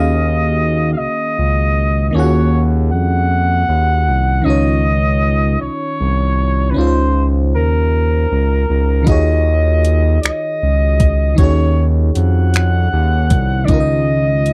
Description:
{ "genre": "slow six-eight R&B", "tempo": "52 BPM (dotted quarters)", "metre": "6/8", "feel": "straight", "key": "Eb dorian", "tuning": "A4 = 440 Hz", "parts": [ { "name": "warm flugelhorn", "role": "melody", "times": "0.0-14.5 s", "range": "Bb4 to Gb5", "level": "-22 LUFS", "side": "equal", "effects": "slapback echo" }, { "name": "FM electric piano", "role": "accompaniment", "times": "0.0-14.5 s", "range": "Db3 to Gb5", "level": "-23 LUFS", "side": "equal", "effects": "chorus" }, { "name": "smooth synth bass", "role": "bass", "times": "0.0-14.5 s", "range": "C2 to F2", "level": "-17 LUFS", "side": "equal", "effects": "none" }, { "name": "smooth R&B drum kit", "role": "drums", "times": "9.1-14.5 s", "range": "finger snaps, hi-hat, kick drum", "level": "-17 LUFS", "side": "equal", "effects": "none" } ], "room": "little or no reverb", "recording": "dry, close 1970s-style studio recording", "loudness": "-15 LUFS", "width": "mono", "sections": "0.0-14.5 A section", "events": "none", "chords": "0.0 Ebm11; 4.5 Dbmaj9; 9.1 Ebm11; 13.7 Dbadd9" }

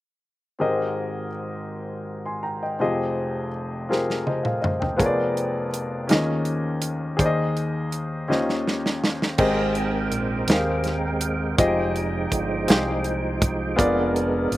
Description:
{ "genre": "slow gospel", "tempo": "55 BPM (dotted quarters)", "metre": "6/8", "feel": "straight", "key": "Ab major", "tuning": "A4 = 439 Hz", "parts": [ { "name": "clear grand piano", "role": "accompaniment", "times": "0.6-14.6 s", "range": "F1 to C6", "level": "-24 LUFS", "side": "left 1 dB", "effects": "slapback echo" }, { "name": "modern studio drum kit", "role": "drums", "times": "3.9-14.6 s", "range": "crash cymbal, hi-hat, kick drum, snare drum, toms", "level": "-23 LUFS", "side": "right 1 dB", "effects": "none" }, { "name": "tonewheel organ", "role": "sustained chords", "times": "9.4-14.6 s", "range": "F3 to G5", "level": "-26 LUFS", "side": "right 2 dB", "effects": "slow rotary speaker, overdrive, chorus vibrato" }, { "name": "fingered electric bass with an envelope filter", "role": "bass", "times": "9.4-14.6 s", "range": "F1 to Eb2", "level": "-29 LUFS", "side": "right 1 dB", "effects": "none" } ], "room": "little or no reverb", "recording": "recorded outdoors, with no room sound", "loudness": "-21 LUFS", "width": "side -16 dB against mid", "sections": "0.6-9.4 A section; 9.4-14.6 B section", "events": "drum fill 3.9-5.0, 8.3-9.4", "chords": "0.6 Abmaj9; 2.8 Fm9; 5.0 Bb7b9/F; 6.1 Eb9sus4; 7.2 Ab/Eb; 8.3 Eb13; 9.4 Abmaj9; 11.6 Fm9; 13.8 Bb7b9/F" }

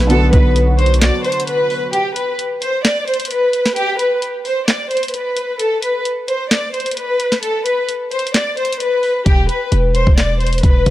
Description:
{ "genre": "hip hop, trap", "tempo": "131 BPM", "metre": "4/4", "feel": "half-time", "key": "B phrygian", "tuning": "A4 = 440 Hz", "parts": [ { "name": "warm studio violin section", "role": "melody", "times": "0.0-10.9 s", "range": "G4 to D5", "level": "-17 LUFS", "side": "left 1 dB", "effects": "none" }, { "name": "felt-muted upright piano", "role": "accompaniment", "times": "0.0-1.9 s", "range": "C3 to B4", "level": "-20 LUFS", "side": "right 1 dB", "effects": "none" }, { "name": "sweeping resonant pad", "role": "sustained chords", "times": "0.0-1.9 s", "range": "D3 to F#4", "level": "-26 LUFS", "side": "left 1 dB", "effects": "chorus" }, { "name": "distorted 808-style bass", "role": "bass", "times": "0.0-1.1, 9.3-10.9 s", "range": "E1 to B1", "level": "-15 LUFS", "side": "equal", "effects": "distortion" }, { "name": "trap drum kit", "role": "drums", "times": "0.1-10.9 s", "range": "handclaps, hi-hat, kick drum, snare drum", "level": "-16 LUFS", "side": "equal", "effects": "vintage 12-bit sampler grit" } ], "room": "light reverb", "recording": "none", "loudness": "-14 LUFS", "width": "side -14 dB against mid", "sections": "0.0-1.9 A section; 1.9-10.9 B section", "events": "break 1.9-9.3", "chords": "0.1 Bm; 1.9 N.C.; 9.3 E5" }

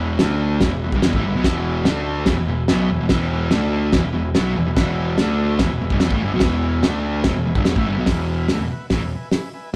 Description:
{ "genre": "garage rock duo or trio", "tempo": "145 BPM", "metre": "4/4", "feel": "straight", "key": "E major", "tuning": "A4 = 440 Hz", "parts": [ { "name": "combo organ", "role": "sustained chords", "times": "0.0-9.7 s", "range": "A4 to B5", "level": "-36 LUFS", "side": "equal", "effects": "none" }, { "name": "fuzz guitar", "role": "riff", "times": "0.0-9.1 s", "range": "E2 to D4", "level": "-23 LUFS", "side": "equal", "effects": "distortion" }, { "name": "overdriven picked electric bass", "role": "bass", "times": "0.0-9.8 s", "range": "E1 to D2", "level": "-28 LUFS", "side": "equal", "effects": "none" }, { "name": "cloth-damped thuddy drum kit", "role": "drums", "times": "0.2-9.4 s", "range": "crash cymbal, hi-hat, kick drum, snare drum", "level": "-23 LUFS", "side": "equal", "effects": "none" } ], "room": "moderate stone room reverb, RT60 1.0 s", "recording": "rough rehearsal-room recording, tube saturation", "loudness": "-20 LUFS", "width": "mono", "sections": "0.0-8.1 A section; 8.1-9.8 B section", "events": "none", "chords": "0.2 D5; 0.6 E; 1.9 D5; 2.3 E; 3.5 D5; 3.9 E; 5.2 D5; 5.6 E; 6.8 D5; 7.3 E" }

